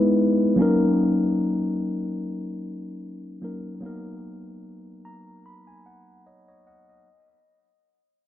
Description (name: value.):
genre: R&B.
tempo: 74 BPM.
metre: 4/4.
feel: swing 54% on 16ths.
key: B major.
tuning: A4 = 440 Hz.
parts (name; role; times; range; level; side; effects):
mellow tine electric piano; solo; 0.0-7.3 s; F#3 to B5; -22 LUFS; left 1 dB; analog delay.
room: light reverb.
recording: echo-heavy mix.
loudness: -21 LUFS.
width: side -12 dB against mid.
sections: 0.0-7.1 A section.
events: fade-out 0.0-7.1; tine electric piano fill 4.6-7.1.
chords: 0.0 Emaj7; 0.6 D#m7; 3.8 Bmaj7.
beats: | 0.59 1.40 2.21 3.02 | 3.83 4.64 5.46 6.27.